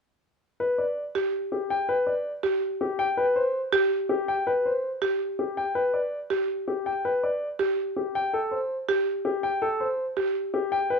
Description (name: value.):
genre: classical, minimalist pattern music.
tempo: 326 BPM (eighths).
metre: 7/8.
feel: straight.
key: unclear.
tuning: A4 = 439 Hz.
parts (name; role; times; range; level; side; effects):
warm grand piano; melody; 0.6-11.0 s; G4 to G5; -25 LUFS; left 2 dB; none.
buzzing marimba with medium hard mallets; arpeggios; 1.1-10.4 s; G4; -26 LUFS; right 2 dB; none.
room: moderate large studio reverb, RT60 0.9 s.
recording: worn, warbling old tape, cassette tape, warbly pitch drift.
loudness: -24 LUFS.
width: side -5 dB against mid.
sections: 0.6-11.0 A section.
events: none.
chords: none.